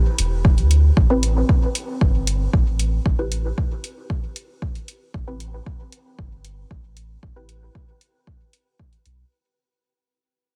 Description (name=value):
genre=dub techno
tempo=115 BPM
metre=4/4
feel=straight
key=A minor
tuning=A4 = 441 Hz
part: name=filtered dub chord stab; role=stabs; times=0.0-9.3 s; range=C4 to B4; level=-30 LUFS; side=equal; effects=phaser, sidechain pumping, dub echo
part: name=soft dub sub bass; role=bass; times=0.2-9.2 s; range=E1 to D2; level=-22 LUFS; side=equal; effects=sidechain pumping
part: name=electronic hi-hat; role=drums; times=0.2-9.2 s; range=none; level=-30 LUFS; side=equal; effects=none
part: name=electronic kick drum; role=drums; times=0.4-8.9 s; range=none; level=-21 LUFS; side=equal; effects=none
room=light reverb, digital ambience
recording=none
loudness=-20 LUFS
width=mono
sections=0.0-9.3 A section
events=fade-out 0.0-9.3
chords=0.0 Am9